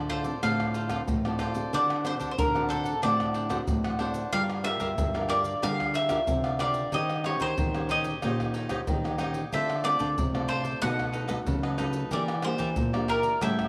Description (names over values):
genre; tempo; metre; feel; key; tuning
samba and choro; 92 BPM; 4/4; straight; D minor; A4 = 440 Hz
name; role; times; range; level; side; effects
bowl-back mandolin; melody; 0.0-13.7 s; A4 to F#5; -32 LUFS; equal; none
cavaquinho; accompaniment; 0.0-13.7 s; D4 to G5; -38 LUFS; equal; none
nylon-string guitar; accompaniment; 0.0-13.7 s; A2 to C5; -38 LUFS; equal; none
nylon-string guitar; bass; 0.0-13.7 s; G2 to E3; -34 LUFS; equal; none
surdo, pandeiro, maracas and tamborim; percussion; 0.1-13.7 s; none; -35 LUFS; equal; none
room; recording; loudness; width
moderate echo chamber reverb, RT60 1.9 s, studio reverb; none; -28 LUFS; mono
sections
0.0-13.7 A section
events
none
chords
0.0 Dm7; 1.7 D7; 4.3 Gm7; 6.9 Eb6; 9.5 Dm7; 10.8 B7; 12.1 Em7b5